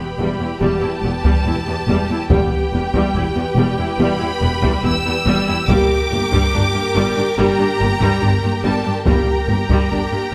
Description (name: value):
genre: cinematic, epic orchestral film score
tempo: 71 BPM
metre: 4/4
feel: straight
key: unclear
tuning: A4 = 440 Hz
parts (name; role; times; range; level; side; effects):
- warm symphonic violin section; melody; 0.0-10.3 s; G5 to E6; -27 LUFS; equal; none
- rich symphonic violin section; second line; 0.0-10.3 s; Bb4 to G5; -28 LUFS; equal; none
- rich symphonic viola section; accompaniment; 0.0-10.3 s; G3 to G4; -24 LUFS; equal; none
- rich symphonic cello section; bass; 0.0-10.2 s; E2 to G2; -25 LUFS; equal; none
- impact; sound effects; 0.0-2.3 s; none; barely audible; none; none
- rich symphonic double bass section; bass; 0.2-10.3 s; E1 to G1; -24 LUFS; equal; none
- mellow French horn section; sustained chords; 0.6-9.4 s; Bb3 to G4; -25 LUFS; equal; none
- taiko ensemble; drums; 1.2-10.3 s; none; -22 LUFS; equal; none
room: wet scoring stage reverb, RT60 1.6 s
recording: none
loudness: -17 LUFS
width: mono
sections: 0.0-10.3 A section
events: impact 0.0-2.3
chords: 0.0 Em; 5.7 Gm